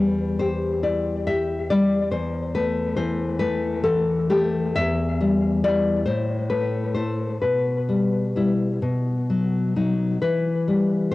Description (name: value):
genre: romantic piece for solo classical guitar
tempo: 42-48 BPM (dotted quarters)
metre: 6/8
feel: rubato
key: E minor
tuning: A4 = 441 Hz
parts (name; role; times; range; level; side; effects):
- nylon-string guitar; solo; 0.0-11.1 s; E2 to E5; -20 LUFS; left 2 dB; analog delay
room: light reverb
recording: home recording on cassette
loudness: -20 LUFS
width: side -17 dB against mid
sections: 0.0-11.1 A section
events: none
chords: 0.0 Em; 2.1 A5/E; 4.8 Em; 6.1 A5; 7.4 Em/B; 8.8 B; 10.2 Em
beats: 0.84 | 2.12 3.38 | 4.76 6.07 | 7.41 8.82 | 10.21